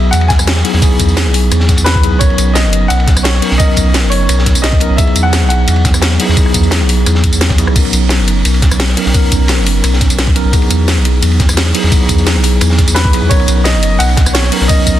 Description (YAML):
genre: liquid drum and bass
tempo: 173 BPM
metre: 4/4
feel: straight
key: B major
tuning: A4 = 440 Hz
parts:
  - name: clear concert grand piano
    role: melody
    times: 0.0-5.8, 12.9-15.0 s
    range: B4 to G#5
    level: -19 LUFS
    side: equal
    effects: dub echo
  - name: mellow tine electric piano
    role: accompaniment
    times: 0.0-15.0 s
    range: F#3 to A#4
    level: -16 LUFS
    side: equal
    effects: medium stereo tremolo, dub echo
  - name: warm sub bass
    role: bass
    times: 0.0-15.0 s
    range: F#1 to E2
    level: -12 LUFS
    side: equal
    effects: none
  - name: crunchy breakbeat drum kit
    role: drums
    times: 0.1-15.0 s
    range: hi-hat, ride cymbal, snare drum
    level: -21 LUFS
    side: equal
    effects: high-pass filter on cymbals, high-pass filter on hats, high-pass filter on snare, high-pass filter on room
  - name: garage drum kit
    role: drums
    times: 0.1-14.9 s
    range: crash cymbal, hi-hat, ride cymbal, rim click, snare drum, tambourine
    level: -17 LUFS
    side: equal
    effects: none
  - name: electronic kick drum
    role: drums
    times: 0.3-14.9 s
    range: none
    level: -12 LUFS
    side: equal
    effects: none
room: light reverb, studio reverb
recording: dense, heavily limited modern master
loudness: -9 LUFS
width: side -12 dB against mid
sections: 0.0-15.0 A section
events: none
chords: 0.0 Emaj9; 2.2 Bmaj7; 5.0 Emaj9; 7.8 Bmaj7; 10.5 Emaj9; 13.3 Bmaj7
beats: 0.13 0.47 | 0.82 1.17 1.51 1.86 | 2.21 2.56 2.90 3.25 | 3.60 3.94 4.29 4.64 | 4.98 5.33 5.68 6.02 | 6.37 6.72 7.06 7.41 | 7.76 8.10 8.45 8.80 | 9.14 9.49 9.84 10.19 | 10.53 10.88 11.23 11.57 | 11.92 12.27 12.61 12.96 | 13.31 13.65 14.00 14.35 | 14.69